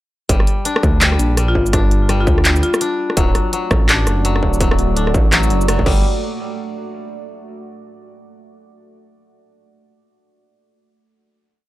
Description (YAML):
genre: half-time drum and bass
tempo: 167 BPM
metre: 4/4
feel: swing 60% on 16ths, half-time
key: G minor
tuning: A4 = 440 Hz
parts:
  - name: koto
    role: arpeggios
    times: 0.3-6.0 s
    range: F#3 to D4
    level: -23 LUFS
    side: left 3 dB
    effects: vintage 12-bit sampler grit, analog delay
  - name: dark detuned saw bass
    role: bass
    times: 0.3-6.0 s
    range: D1 to D2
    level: -17 LUFS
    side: equal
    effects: none
  - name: drum and bass drum kit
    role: drums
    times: 0.3-5.9 s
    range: crash cymbal, handclaps, hi-hat, rim click, shaker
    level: -19 LUFS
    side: equal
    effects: overdrive
  - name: electronic kick drum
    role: drums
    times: 0.3-5.9 s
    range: none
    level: -17 LUFS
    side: equal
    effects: distortion
  - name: marimba with medium hard mallets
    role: melody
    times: 1.5-3.1 s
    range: F4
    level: -22 LUFS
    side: left 2 dB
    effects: analog delay
  - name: deep dark ambient pad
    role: sustained chords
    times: 3.6-6.0 s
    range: A3 to D5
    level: -26 LUFS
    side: right 3 dB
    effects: chorus, built-in reverb, sidechain pumping
room: little or no reverb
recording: dry, gritty hardware recording, transformer saturation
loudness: -13 LUFS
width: side -16 dB against mid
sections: 0.3-6.0 drop; 6.0-7.5 final hit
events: drop 0.3-6.0; band accent 5.7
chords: 0.3 Gm7; 3.2 D; 5.9 Gm7; 6.0 N.C.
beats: | 0.29 0.65 1.01 1.37 | 1.73 2.09 2.45 2.81 | 3.17 3.53 3.89 4.25 | 4.61 4.96 5.32 5.68